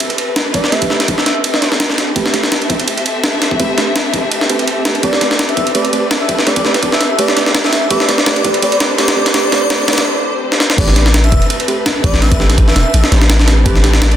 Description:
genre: drum and bass, jungle.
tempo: 167 BPM.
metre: 4/4.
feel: swing 54% on 16ths.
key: A minor.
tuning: A4 = 440 Hz.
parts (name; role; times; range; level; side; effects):
warm studio string section; sustained chords; 0.0-14.2 s; C4 to E5; -21 LUFS; left 2 dB; vintage 12-bit sampler grit.
jungle sampler-style drum kit; drums; 0.0-14.2 s; crash cymbal, kick drum, ride cymbal, snare drum; -14 LUFS; equal; overdrive, high-pass filter on kick, high-pass filter on cymbals, high-pass filter on snare, high-pass filter on room.
airy dreamy lead; melody; 0.5-1.7, 5.0-13.2 s; D5 to E5; -19 LUFS; equal; chorus, dub echo.
deep mellow chord stab; stabs; 0.7-13.9 s; A3 to B4; -20 LUFS; right 4 dB; chorus, cassette tape, dub echo.
long sustained 808-style bass; bass; 10.8-14.2 s; E1 to A1; -11 LUFS; equal; none.
room: moderate lush hall reverb, RT60 1.7 s, digital ambience.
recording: dense, heavily limited modern master.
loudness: -11 LUFS.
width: side -10 dB against mid.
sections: 0.0-10.8 A section; 10.8-14.2 B section.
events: build-up 0.0-10.8; filter sweep on digital synth lead 0.0-10.8; break 10.1-10.8; drum fill 10.5; drop 10.8-14.2.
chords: 0.0 Am9.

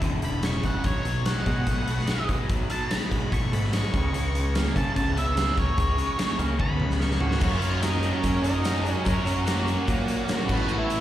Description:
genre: classic rock.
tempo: 146 BPM.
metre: 4/4.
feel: straight.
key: F# major from 7.4 s.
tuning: A4 = 438 Hz.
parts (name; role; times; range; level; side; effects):
distorted electric guitar; riff; 0.0-11.0 s; E2 to A#4; -32 LUFS; left 6 dB; distortion, slapback echo.
overdriven electric guitar; riff; 0.0-11.0 s; E2 to F#4; -33 LUFS; right 8 dB; phaser, slapback echo.
growling picked electric bass; bass; 0.0-11.0 s; E1 to C#3; -27 LUFS; equal; overdrive.
big rock drum kit; drums; 0.0-11.0 s; crash cymbal, hi-hat, kick drum, snare drum, tambourine, toms; -28 LUFS; equal; none.
octave-fuzz lead guitar; melody; 0.2-11.0 s; A#3 to C#6; -31 LUFS; right 1 dB; distortion, slapback echo, tape echo.
bright tonewheel organ; sustained chords; 0.5-11.0 s; E3 to E#5; -42 LUFS; equal; none.
octave-fuzz lead guitar; second line; 7.2-11.0 s; F#4 to C#5; -34 LUFS; right 3 dB; distortion, slapback echo, tape echo.
distorted electric guitar; riff; 7.4-11.0 s; F#3 to A#4; -33 LUFS; right 2 dB; distortion, slapback echo.
egg shaker; percussion; 7.4-11.0 s; none; -51 LUFS; left 2 dB; none.
room: light reverb, small room ambience.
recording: live gig heard through the venue's PA, recital hall reverb.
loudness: -22 LUFS.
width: side -12 dB against mid.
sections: 0.0-7.4 A section; 7.4-11.0 B section.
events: lead electric guitar solo 0.0-7.4; drum fill 6.6-7.4.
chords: 0.0 E5; 0.8 B; 3.9 C#; 7.4 F#; 10.5 Asus2.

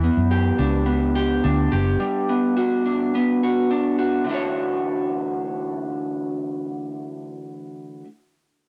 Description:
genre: indie pop.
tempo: 106 BPM.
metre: 4/4.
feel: straight.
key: D major.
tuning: A4 = 439 Hz.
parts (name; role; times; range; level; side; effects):
electric guitar through a small old amp; accompaniment; 0.0-8.1 s; D3 to C#5; -24 LUFS; equal; subtle chorus, warbly pitch drift, cassette tape.
vintage muted fingered electric bass; bass; 0.0-1.9 s; F#1 to F#2; -23 LUFS; equal; none.
room: wet booth ambience, RT60 0.2 s.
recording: home recording on cassette.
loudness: -22 LUFS.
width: mono.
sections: 0.0-4.3 A section; 4.3-6.5 B section.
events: none.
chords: 0.0 Em7; 2.0 Gmaj7; 4.3 Dmaj9.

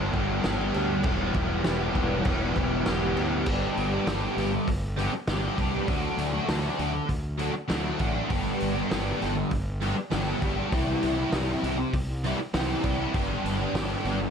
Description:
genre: rock, shoegaze and dream pop.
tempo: 99 BPM.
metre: 4/4.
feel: straight.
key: G major.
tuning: A4 = 440 Hz.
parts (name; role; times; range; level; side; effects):
biting overdriven guitar; riff; 0.0-14.3 s; E2 to G4; -27 LUFS; equal; ensemble chorus.
fuzz fingered electric bass; bass; 0.0-14.2 s; E1 to D2; -31 LUFS; equal; overdrive.
loose indie drum kit; drums; 0.1-14.2 s; crash cymbal, hi-hat, kick drum, snare drum; -31 LUFS; equal; none.
room: light reverb, studio reverb.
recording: none.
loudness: -24 LUFS.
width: side -7 dB against mid.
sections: 0.0-3.5 A section; 3.5-14.3 B section.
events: none.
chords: 0.0 G; 1.1 Em; 3.5 G; 5.9 D; 8.3 G; 10.7 C; 13.2 G.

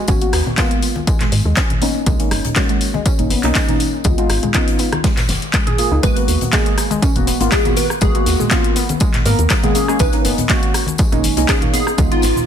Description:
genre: deep house.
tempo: 121 BPM.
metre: 4/4.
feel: swing 53% on 16ths.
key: G# dorian.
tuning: A4 = 439 Hz.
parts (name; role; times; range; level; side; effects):
warbly dusty pluck; arpeggios; 0.0-12.0 s; G#3 to G#4; -25 LUFS; right 2 dB; chorus, phaser, sidechain pumping, ping-pong delay.
deep mellow chord stab; stabs; 0.1-12.5 s; A#3 to A#4; -20 LUFS; equal; chorus, sidechain pumping, tape echo.
woody FM bass; bass; 0.1-12.3 s; D#1 to G#2; -19 LUFS; equal; sidechain pumping.
big rock drum kit; drums; 0.1-12.4 s; hi-hat, snare drum, tambourine; -30 LUFS; left 3 dB; sidechain pumping on hats, high-pass filter on hats, high-pass filter on snare, sidechain pumping on perc, high-pass filter on perc, high-pass filter on room.
electronic kick drum; drums; 0.1-12.1 s; none; -18 LUFS; equal; overdrive.
house drum kit; drums; 0.1-12.5 s; handclaps, hi-hat, rim click, shaker; -21 LUFS; left 2 dB; none.
congas; percussion; 0.1-12.5 s; none; -26 LUFS; left 2 dB; none.
plucky unison lead; melody; 6.0-12.5 s; E#4 to B4; -22 LUFS; right 1 dB; phaser, wide subtle chorus, tape echo.
room: light reverb.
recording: dense, heavily limited modern master.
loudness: -14 LUFS.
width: side -8 dB against mid.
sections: 0.0-6.0 A section; 6.0-12.5 B section.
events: filter sweep on synth stab 0.0-6.0; drop 6.0-12.5.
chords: 0.0 G#m9; 1.8 Bmaj7; 3.8 C#9 (rootless); 5.0 F#maj9 (rootless); 6.0 G#m9; 9.8 Bmaj7; 11.7 C#9.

